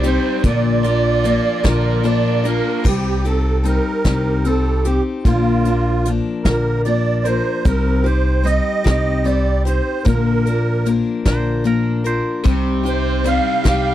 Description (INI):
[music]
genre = folk rock and heartland rock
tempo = 50 BPM (dotted quarters)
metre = 6/8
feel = straight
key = C minor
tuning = A4 = 439 Hz
[part]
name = musette accordion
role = melody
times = 0.0-13.9 s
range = F4 to F5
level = -21 LUFS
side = right 5 dB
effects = none
[part]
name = picked steel-string acoustic guitar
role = accompaniment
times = 0.0-13.9 s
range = Bb2 to Bb4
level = -20 LUFS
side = left 5 dB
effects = none
[part]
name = overdriven electric guitar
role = riff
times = 0.0-2.9, 12.4-13.9 s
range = Bb2 to G4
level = -24 LUFS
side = right 1 dB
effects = none
[part]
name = upright bass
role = bass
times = 0.0-13.9 s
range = Bb1 to C2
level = -19 LUFS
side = equal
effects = none
[part]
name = soft brush drum kit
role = drums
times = 0.0-13.8 s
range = crash cymbal, hi-hat, kick drum, snare drum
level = -18 LUFS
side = equal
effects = none
[part]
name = twangy electric guitar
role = second line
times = 11.3-12.4 s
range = Bb4 to C5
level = -27 LUFS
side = right 3 dB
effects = phaser
[sound]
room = little or no reverb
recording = dry, close 1970s-style studio recording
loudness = -15 LUFS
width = side -12 dB against mid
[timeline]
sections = 0.0-2.8 A section; 2.8-13.9 A section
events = none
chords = 0.4 Bb; 2.8 Cm; 5.3 Bb; 7.7 Cm; 10.1 Bb; 12.5 Cm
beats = | 0.44 1.64 | 2.85 4.05 | 5.25 6.46 | 7.66 8.86 | 10.06 11.26 | 12.46 13.65